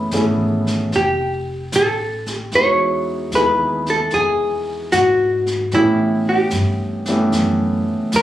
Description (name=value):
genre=jazz ballad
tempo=75 BPM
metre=4/4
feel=swing 68% on 8ths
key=unclear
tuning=A4 = 439 Hz
part: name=archtop guitar, miked and amplified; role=melody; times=0.0-8.2 s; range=E4 to C#5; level=-17 LUFS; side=equal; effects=none
part: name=warm baby grand piano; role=accompaniment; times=0.0-8.2 s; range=E3 to G#4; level=-20 LUFS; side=equal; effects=none
part: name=upright bass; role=bass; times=0.0-8.2 s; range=F1 to A2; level=-25 LUFS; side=equal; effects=none
part: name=jazz brush drum kit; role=drums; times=0.1-8.2 s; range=brushed snare drum, hi-hat, snare drum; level=-29 LUFS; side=right 1 dB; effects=none
room=moderate studio reverb, RT60 0.9 s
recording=recorded on a phone in the room, club reverb, compression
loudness=-16 LUFS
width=side -13 dB against mid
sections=0.0-8.2 A section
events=none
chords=0.0 F#m11 (rootless); 0.9 F; 2.5 Emaj7; 5.7 A7